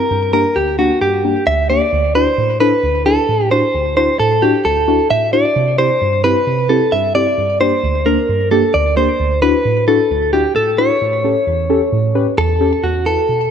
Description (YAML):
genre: pop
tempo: 132 BPM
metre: 4/4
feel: straight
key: D mixolydian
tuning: A4 = 440 Hz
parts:
  - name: direct-recorded clean electric guitar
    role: melody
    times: 0.0-13.5 s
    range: F#4 to E5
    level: -15 LUFS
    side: equal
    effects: ping-pong delay
  - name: muted felt-like synth keys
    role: accompaniment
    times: 0.1-13.5 s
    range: D2 to B4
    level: -16 LUFS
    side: equal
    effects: chorus
room: moderate plate reverb, RT60 3.2 s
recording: dark, warm production, nothing above 10.8 kHz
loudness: -12 LUFS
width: side -8 dB against mid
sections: 0.0-12.8 A section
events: none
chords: 0.1 Gm; 1.9 Dadd9; 5.6 C; 7.4 Gm; 9.2 Dadd9; 11.0 A7; 12.8 Esus2